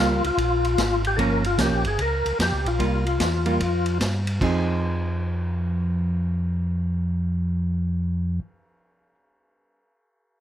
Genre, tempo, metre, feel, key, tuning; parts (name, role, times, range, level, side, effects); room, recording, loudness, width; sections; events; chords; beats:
soul jazz organ trio; 149 BPM; 4/4; swing 65% on 8ths; F minor; A4 = 440 Hz
percussive tonewheel organ; melody; 0.0-4.0 s; F4 to Bb4; -24 LUFS; left 3 dB; slow rotary speaker, overdrive, chorus vibrato
hollow-body jazz guitar; accompaniment; 0.0-9.2 s; F3 to Ab4; -26 LUFS; right 3 dB
mellow tonewheel organ; bass; 0.0-8.4 s; G1 to G2; -24 LUFS; equal; slow rotary speaker
vintage drum kit; drums; 0.2-4.5 s; crash cymbal, hi-hat, kick drum, ride cymbal, snare drum; -29 LUFS; equal
light reverb; -21 LUFS; side -11 dB against mid
0.0-4.4 A section; 4.4-7.6 B section
0.0 C7sus4 (rootless); 1.2 Gm7b5; 2.8 C7sus4; 4.4 Fm7
0.39 0.79 | 1.19 1.59 2.00 2.40 | 2.81 3.21 3.61 4.01 | 4.42 4.82 5.22 5.63 | 6.03 6.43 6.84 7.24